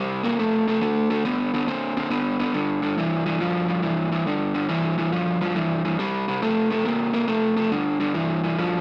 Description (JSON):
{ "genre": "blues", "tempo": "139 BPM", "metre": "4/4", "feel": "swing 67% on 8ths", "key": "G mixolydian", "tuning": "A4 = 441 Hz", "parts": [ { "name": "overdriven electric guitar", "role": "solo", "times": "0.0-8.8 s", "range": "G2 to C4", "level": "-24 LUFS", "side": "equal", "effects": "none" } ], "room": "wet studio reverb, RT60 0.8 s", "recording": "none", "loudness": "-24 LUFS", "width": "mono", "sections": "0.0-2.5 A section; 2.5-8.8 B section", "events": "none", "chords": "0.0 C5; 0.8 D5; 2.5 G5; 6.0 C5; 7.7 G5" }